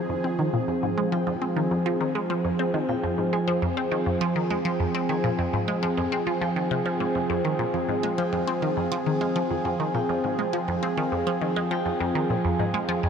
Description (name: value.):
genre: ambient, sequencer-driven space music.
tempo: 102 BPM.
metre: 4/4.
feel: straight.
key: F minor.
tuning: A4 = 441 Hz.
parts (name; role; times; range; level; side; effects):
sweeping resonant pad; sustained chords; 0.0-13.1 s; F3 to Ab4; -25 LUFS; right 1 dB; chorus.
Celtic harp; arpeggios; 0.0-13.1 s; F4 to Ab5; -40 LUFS; left 4 dB; none.
resonant blip pluck; riff; 0.0-13.1 s; F2 to C4; -27 LUFS; equal; phaser, analog delay.
room: wet huge ambient reverb, RT60 7.4 s.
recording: none.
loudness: -23 LUFS.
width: side -7 dB against mid.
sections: 0.0-13.1 A section.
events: none.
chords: 0.0 Fmadd9.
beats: | 0.09 0.68 1.27 1.86 | 2.45 3.03 3.62 4.21 | 4.80 5.39 5.97 6.56 | 7.15 7.74 8.33 8.92 | 9.50 10.09 10.68 11.27 | 11.86 12.45 13.03.